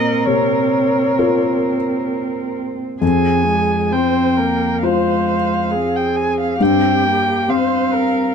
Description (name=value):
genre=neoclassical piano and strings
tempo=66 BPM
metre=4/4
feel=rubato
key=F minor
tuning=A4 = 440 Hz
part: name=muted violin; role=melody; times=0.0-8.3 s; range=Db5 to Ab5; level=-20 LUFS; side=left 1 dB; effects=none
part: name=muted cello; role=second line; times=0.0-8.3 s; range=Ab3 to C4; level=-21 LUFS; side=right 4 dB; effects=none
part: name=felt-muted upright piano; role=accompaniment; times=0.0-8.3 s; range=F2 to C5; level=-19 LUFS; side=left 4 dB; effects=none
part: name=muted viola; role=accompaniment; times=0.0-8.3 s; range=G4 to C5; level=-22 LUFS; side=right 2 dB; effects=none
room=little or no reverb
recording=close, detailed microphones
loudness=-15 LUFS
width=side -6 dB against mid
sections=0.0-8.3 A section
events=none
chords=0.0 Bbmadd9; 3.0 Fm; 6.6 C5/G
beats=0.27 1.19 2.11 | 3.02 3.92 4.83 5.71 | 6.60 7.49